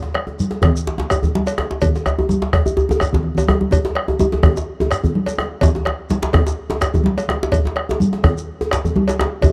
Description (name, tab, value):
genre	west african traditional, West African drum ensemble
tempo	126 BPM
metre	4/4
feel	swing 53% on 16ths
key	none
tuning	none
part	congas	percussion	0.0-9.5 s	none	-24 LUFS	equal	none
part	djembe	percussion	0.0-9.5 s	none	-27 LUFS	equal	none
part	cowbell	percussion	0.1-9.5 s	none	-27 LUFS	equal	none
part	bombo	percussion	0.2-9.5 s	none	-21 LUFS	equal	none
part	shekere	percussion	0.4-9.5 s	none	-29 LUFS	equal	none
part	djembe	percussion	0.6-9.5 s	none	-23 LUFS	equal	none
room	little or no reverb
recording	dry, close 1970s-style studio recording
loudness	-18 LUFS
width	mono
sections	0.0-9.5 A section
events	drum fill 3.2-3.7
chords	none